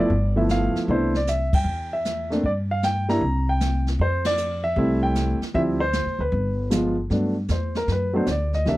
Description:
jazz piano trio; 154 BPM; 4/4; swing 66% on 8ths; C major; A4 = 441 Hz
warm grand piano; melody; 0.0-8.8 s; E3 to Bb5; -23 LUFS; equal
upright bass; bass; 0.0-8.8 s; G1 to G2; -24 LUFS; equal
jazz brush drum kit; drums; 0.1-8.8 s; brushed snare drum, crash cymbal, hi-hat, kick drum, ride cymbal, snare drum; -28 LUFS; equal
little or no reverb; -20 LUFS; side -17 dB against mid
0.0-7.1 A section; 7.1-8.8 B section
band accent 1.5, 4.2; grand piano solo 7.1-8.8
0.1 G13; 0.9 C69; 2.4 Gm; 3.2 C5; 4.0 Fmaj9; 5.5 Dm11; 6.3 G7b9; 7.1 Gmaj9
0.10 0.49 | 0.88 1.27 1.66 2.05 | 2.44 2.82 3.21 3.60 | 3.99 4.38 4.77 5.15 | 5.54 5.93 6.32 6.71 | 7.10 7.49 7.88 8.26 | 8.65

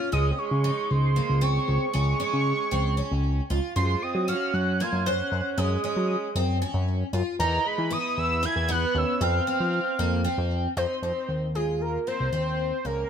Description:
progressive instrumental, progressive; 231 BPM (eighths); 7/8; straight; F phrygian; A4 = 440 Hz
fat analog lead; melody; 0.0-13.1 s; Ab4 to Ab6; -29 LUFS; equal; chorus, plate reverb, ping-pong delay
warm alto saxophone; second line; 0.0-10.8 s; E3 to F4; -32 LUFS; right 6 dB
picked twelve-string acoustic guitar; arpeggios; 0.0-13.1 s; Bb3 to C5; -30 LUFS; left 1 dB; wide subtle chorus, ping-pong delay
fat analog bass; bass; 0.1-13.0 s; C2 to Gb3; -26 LUFS; equal
light reverb; -23 LUFS; side -8 dB against mid
0.0-11.0 A section; 11.0-13.1 B section
0.1 Dbsus2; 3.8 Gbsus2; 7.4 E5; 9.2 F5
| 0.12 0.38 0.64 0.90 1.16 1.42 1.68 | 1.94 2.20 2.46 2.72 2.98 3.24 3.50 | 3.76 4.02 4.28 4.54 4.80 5.06 5.32 | 5.58 5.83 6.09 6.35 6.61 6.87 7.13 | 7.39 7.65 7.91 8.17 8.43 8.69 8.95 | 9.21 9.47 9.73 9.99 10.25 10.51 10.77 | 11.03 11.29 11.55 11.81 12.07 12.33 12.59 | 12.85

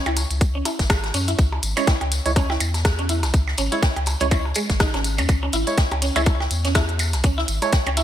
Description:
minimal techno; 123 BPM; 4/4; swing 57% on 16ths; C# minor; A4 = 440 Hz
mallet-like synth pluck; riff; 0.1-8.0 s; G#3 to E4; -27 LUFS; equal; lush chorus, cassette tape, sidechain pumping, ping-pong delay
saturated sub bass; bass; 0.1-8.0 s; G#1 to F#2; -24 LUFS; equal; sidechain pumping
minimal click drum kit; drums; 0.1-8.0 s; hi-hat, rim click; -28 LUFS; equal; overdrive, gated reverb
percussion blips; percussion; 0.1-8.0 s; -30 LUFS; right 3 dB
open jazz drum kit; drums; 0.2-8.0 s; hi-hat, snare drum, tambourine; -34 LUFS; left 1 dB; sidechain pumping on hats, high-pass filter on hats, high-pass filter on snare, sidechain pumping on perc, high-pass filter on perc, high-pass filter on room, gated reverb
tambourine; percussion; 0.2-8.0 s; -32 LUFS; left 5 dB
electronic kick drum; drums; 0.4-7.8 s; -18 LUFS; equal
percussive organ stab; stabs; 1.8-7.7 s; G#3 to C#5; -27 LUFS; right 3 dB; lush chorus, ping-pong delay
light reverb; bright 1980s-style digital production; -18 LUFS; side -11 dB against mid
0.0-8.0 A section
0.0 C#m
0.41 0.90 | 1.39 1.87 2.36 2.85 | 3.34 3.83 4.31 4.80 | 5.29 5.78 6.26 6.75 | 7.24 7.73

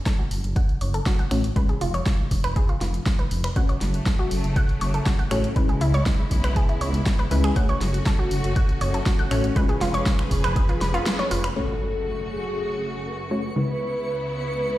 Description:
progressive house; 120 BPM; 4/4; straight; F# minor; A4 = 439 Hz
wide unison pluck; stabs; 0.0-14.8 s; C#3 to C#5; -27 LUFS; left 2 dB; sidechain pumping, tape echo
analog pluck; arpeggios; 0.1-11.5 s; E4 to F#5; -30 LUFS; right 1 dB; chorus, sidechain pumping, tape echo
deep house drum kit; drums; 0.1-11.5 s; finger snaps, hi-hat, snare drum; -30 LUFS; equal
electronic kick drum; drums; 0.1-10.7 s; -23 LUFS; equal
dark detuned saw bass; bass; 0.3-11.5 s; E#1 to C#2; -25 LUFS; equal; sidechain pumping
clear symphonic string section; sustained chords; 3.6-14.8 s; C#2 to B4; -31 LUFS; equal; sidechain pumping
warm velvety synth lead; melody; 11.6-14.8 s; G#4 to B4; -28 LUFS; left 1 dB; chorus, sidechain pumping, dub echo
impact; sound effects; 11.6-13.6 s; -33 LUFS; equal
twinkling granular texture; texture; 12.1-14.8 s; C#6; -38 LUFS; right 2 dB; built-in reverb, sidechain pumping
light reverb; played on a big sound system in a bare room, stone room reverb; -21 LUFS; side -15 dB against mid
0.0-11.6 A section; 11.6-14.8 B section
filter sweep on synth arpeggio sound 0.0-11.6; filter sweep on synth pluck 0.0-11.6, 11.6-14.8; kick drops out 11.1-11.6; band accent 11.1; impact 11.6-13.6
0.0 F#m; 1.6 C#7/E#; 3.6 F#m; 5.6 C#m7; 7.6 F#m; 9.6 C#7/E#; 11.6 F#m; 13.6 C#m7
0.06 0.56 1.06 | 1.56 2.06 2.56 3.06 | 3.56 4.06 4.56 5.06 | 5.56 6.06 6.56 7.06 | 7.56 8.06 8.56 9.06 | 9.56 10.06 10.56 11.06 | 11.56 12.06 12.56 13.06 | 13.56 14.06 14.56

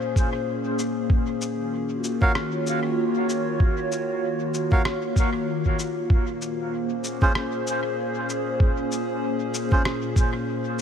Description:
ambient dub; 96 BPM; 4/4; swing 58% on 16ths; Bb minor; A4 = 440 Hz
warbly tape-like pad; sustained chords; 0.0-10.8 s; Bb2 to Db5; -25 LUFS; left 1 dB; chorus, built-in reverb, phaser
electronic cabasa and rim click; drums; 0.2-10.8 s; -32 LUFS; equal; dub echo
electronic kick drum; drums; 0.2-10.3 s; -20 LUFS; equal
melodica; stabs; 2.2-9.8 s; Db4 to F5; -31 LUFS; right 2 dB; dub echo
moderate huge ambient reverb, RT60 4.8 s; -22 LUFS; side -8 dB against mid
0.0-6.1 A section; 6.1-10.8 B section
filter sweep on melodica 0.0-6.1
0.0 Bbm7; 1.1 Ebm7; 6.1 Bbm7
0.47 | 1.10 1.73 2.35 2.98 | 3.60 4.22 4.85 5.47 | 6.10 6.72 7.35 7.97 | 8.60 9.22 9.85 10.47

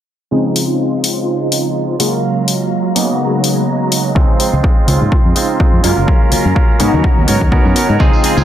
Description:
filtered disco house; 125 BPM; 4/4; swing 56% on 16ths; Db major; A4 = 440 Hz
funky polysynth comp; accompaniment; 0.3-8.4 s; Db3 to Bb4; -16 LUFS; right 1 dB; chorus, phaser, sidechain pumping, low-pass filter
phased string machine; sustained chords; 0.3-8.4 s; Gb3 to C6; -21 LUFS; equal; ensemble chorus, phaser, sidechain pumping, low-pass filter
electronic hi-hat; drums; 0.6-8.3 s; -18 LUFS; left 4 dB; overdrive, sidechain pumping on hats, studio reverb
tambourine and congas; percussion; 4.1-8.4 s; -22 LUFS; right 1 dB; sidechain pumping on perc, low-pass filter on perc
direct-recorded clean electric guitar; riff; 4.2-8.4 s; Ab3 to Bb4; -19 LUFS; right 4 dB; sidechain pumping, low-pass filter
fingered electric bass; bass; 4.2-8.4 s; Gb1 to Ab2; -15 LUFS; equal; sidechain pumping, low-pass filter
electronic kick drum; drums; 4.2-8.1 s; -12 LUFS; equal; studio reverb
light reverb, digital ambience; -11 LUFS; side -11 dB against mid
0.3-8.0 A section
filter sweep 0.3-8.0
0.3 Dbmaj7; 2.0 Gbmaj7; 3.0 Abm11; 4.2 Dbmaj7; 5.8 Gbmaj7; 6.8 Abm11
| 0.32 0.80 1.28 1.76 | 2.24 2.72 3.20 3.68 | 4.16 4.64 5.12 5.60 | 6.08 6.56 7.04 7.52 | 8.00

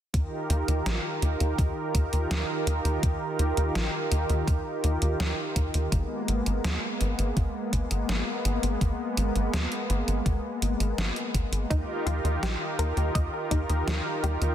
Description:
synthwave; 83 BPM; 4/4; straight; Eb major; A4 = 440 Hz
warm analog pad; sustained chords; 0.1-14.5 s; Eb3 to Bb4; -30 LUFS; right 1 dB; chorus, sidechain pumping
tight sequencer bass; bass; 0.1-14.5 s; Ab1 to Eb2; -27 LUFS; equal
detuned 8-bit digital drum machine; drums; 0.1-14.5 s; hi-hat, snare drum; -33 LUFS; right 1 dB
electronic kick drum; drums; 0.1-13.7 s; -28 LUFS; equal
analog pluck; arpeggios; 11.7-14.5 s; Eb4 to Eb5; -34 LUFS; left 4 dB; chorus, ping-pong delay
light reverb; dense, heavily limited modern master; -25 LUFS; side -10 dB against mid
0.1-14.5 A section
0.1 Ebadd9; 5.9 Abmadd9; 11.7 Ebadd9
| 0.14 0.86 1.58 2.31 | 3.03 3.75 4.47 5.20 | 5.92 6.64 7.37 8.09 | 8.81 9.54 10.26 10.98 | 11.70 12.43 13.15 13.87

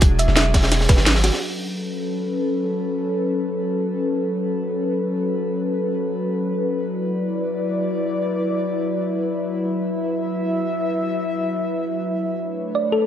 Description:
liquid drum and bass; free time; A major; A4 = 438 Hz
airy breathy pad; sustained chords; 0.0-13.1 s; F#3 to E5; -22 LUFS; left 1 dB; chorus, sidechain pumping
long sustained 808-style bass; bass; 0.0-1.3 s; E1 to G#1; -19 LUFS; equal
crunchy breakbeat drum kit; drums; 0.0-1.4 s; hi-hat, snare drum; -26 LUFS; equal; high-pass filter on hats, high-pass filter on snare, high-pass filter on room
drum and bass drum kit; drums; 0.0-1.3 s; hi-hat, snare drum; -20 LUFS; equal
electronic kick drum; drums; 0.0-1.0 s; -15 LUFS; equal
thumb-piano-like synth pluck; arpeggios; 0.2-1.4, 12.8-13.1 s; F#4 to E5; -24 LUFS; right 1 dB; chorus, tape echo
moderate plate reverb, RT60 1.4 s; -20 LUFS; side -10 dB against mid
0.0-1.4 A section; 1.4-13.1 B section
drop 0.0-1.4; filter sweep on analog synth pad 1.4-13.1
0.0 E9; 1.4 A69; 6.8 D69; 12.4 Bm9
free time

